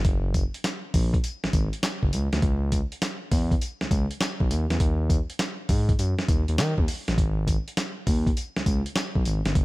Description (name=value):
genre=R&B, new jack swing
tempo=101 BPM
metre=4/4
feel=swing 66% on 16ths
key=unclear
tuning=A4 = 442 Hz
part: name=smooth gliding synth bass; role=bass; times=0.0-9.6 s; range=F#1 to D#3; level=-25 LUFS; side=equal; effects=none
part: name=dusty soul sampler-style drum kit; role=drums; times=0.0-9.6 s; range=handclaps, hi-hat, kick drum, snare drum, tambourine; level=-25 LUFS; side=equal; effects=none
room=little or no reverb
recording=none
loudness=-23 LUFS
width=side -21 dB against mid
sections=0.0-9.6 A section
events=none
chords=none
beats=| 0.05 0.64 1.24 1.83 | 2.42 3.02 3.61 4.21 | 4.80 5.39 5.99 6.58 | 7.18 7.77 8.36 8.96 | 9.55